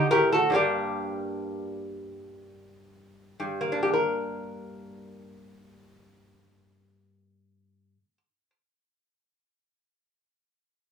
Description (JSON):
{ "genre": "classical, baroque-style dance for lute", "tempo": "free time", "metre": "none", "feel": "none", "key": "G minor", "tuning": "A4 = 440 Hz", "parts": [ { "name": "lute", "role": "solo", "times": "0.0-8.5 s", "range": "G2 to Bb4", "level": "-25 LUFS", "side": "equal", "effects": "none" } ], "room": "light reverb", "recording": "small room ambience", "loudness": "-25 LUFS", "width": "side -7 dB against mid", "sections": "0.0-3.4 A section; 3.4-9.7 B section", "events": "slowing down 0.0-3.4", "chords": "0.0 D (rootless); 0.5 Gm" }